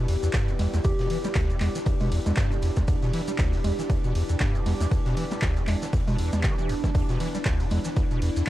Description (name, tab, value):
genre	acid house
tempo	118 BPM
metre	4/4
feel	swing 57% on 16ths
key	E minor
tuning	A4 = 439 Hz
part	warbly tape-like pad	sustained chords	0.0-8.5 s	E3 to G4	-33 LUFS	equal	chorus, built-in reverb, phaser, vintage 12-bit sampler grit, sidechain pumping
part	acid bass, square	riff	0.0-8.4 s	D2 to G3	-27 LUFS	equal	overdrive, ensemble chorus
part	airy breathy pad	texture	0.0-8.5 s	B3 to A5	-38 LUFS	left 1 dB	chorus, sidechain pumping
part	oversized low-tuned drum kit	drums	0.1-8.5 s	hi-hat, snare drum	-44 LUFS	equal	none
part	punchy analog drum machine	drums	0.1-8.5 s	congas, handclaps, hi-hat, ride cymbal, snare drum	-33 LUFS	right 1 dB	overdrive
part	maracas	percussion	0.2-8.5 s	none	-45 LUFS	right 1 dB	none
part	electronic kick drum	drums	0.3-8.1 s	none	-26 LUFS	equal	overdrive
part	soft struck synth lead	melody	0.8-1.4 s	G4	-34 LUFS	left 2 dB	chorus, analog delay
room	small room ambience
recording	cassette tape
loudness	-23 LUFS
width	side -15 dB against mid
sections	0.0-8.5 A section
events	none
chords	0.0 Em7